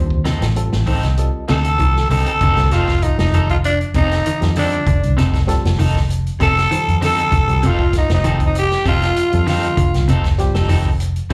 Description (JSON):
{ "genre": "afrobeat", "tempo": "98 BPM", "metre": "4/4", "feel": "straight", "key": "F mixolydian", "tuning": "A4 = 440 Hz", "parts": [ { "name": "barky reed electric piano", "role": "accompaniment", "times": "0.0-11.3 s", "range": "G3 to A5", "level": "-30 LUFS", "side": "equal", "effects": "overdrive, fast tremolo, slapback echo" }, { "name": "clean electric guitar", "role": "arpeggios", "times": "0.0-11.3 s", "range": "C3 to Eb3", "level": "-26 LUFS", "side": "equal", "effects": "tremolo, slapback echo" }, { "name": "vintage muted fingered electric bass", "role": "bass", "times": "0.0-11.3 s", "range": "F1 to F2", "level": "-19 LUFS", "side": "equal", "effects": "none" }, { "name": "vintage drum kit", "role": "drums", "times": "0.1-11.3 s", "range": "hi-hat, kick drum, snare drum", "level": "-25 LUFS", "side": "equal", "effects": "none" }, { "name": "electric guitar at the edge of break-up", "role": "stabs", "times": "0.2-11.3 s", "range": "C4 to A4", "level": "-28 LUFS", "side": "equal", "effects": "tremolo, slapback echo" }, { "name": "growling tenor saxophone", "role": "melody", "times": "1.5-10.1 s", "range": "D4 to A4", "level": "-22 LUFS", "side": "equal", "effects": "slapback echo" }, { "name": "breathy alto saxophone", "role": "second line", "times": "1.5-10.1 s", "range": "D4 to A4", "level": "-28 LUFS", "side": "equal", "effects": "none" } ], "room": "light reverb", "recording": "live gig heard through the venue's PA, club reverb", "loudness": "-16 LUFS", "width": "mono", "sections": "0.0-2.4 A section; 2.4-11.3 B section", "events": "reed electric piano fill 0.6-2.4", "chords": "0.0 F7" }